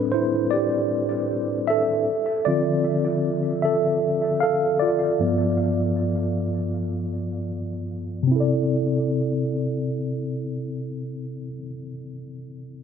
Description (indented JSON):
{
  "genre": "R&B",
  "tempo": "77 BPM",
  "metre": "4/4",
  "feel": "swing 54% on 16ths",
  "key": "C major",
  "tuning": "A4 = 440 Hz",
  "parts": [
    { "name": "mellow tine electric piano", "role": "solo", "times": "0.0-12.8 s", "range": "G2 to F5", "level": "-22 LUFS", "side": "equal", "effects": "medium stereo tremolo, tape echo" }
  ],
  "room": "wet recital hall reverb, RT60 1.7 s, digital ambience",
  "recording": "low-pass filter",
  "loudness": "-21 LUFS",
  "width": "side -7 dB against mid",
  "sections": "0.0-8.3 A section; 8.3-11.4 B section",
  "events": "tine electric piano solo 0.0-8.3; filter sweep 0.0-8.3",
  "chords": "0.0 Am11; 2.1 Dm9; 5.2 G7; 8.3 C69"
}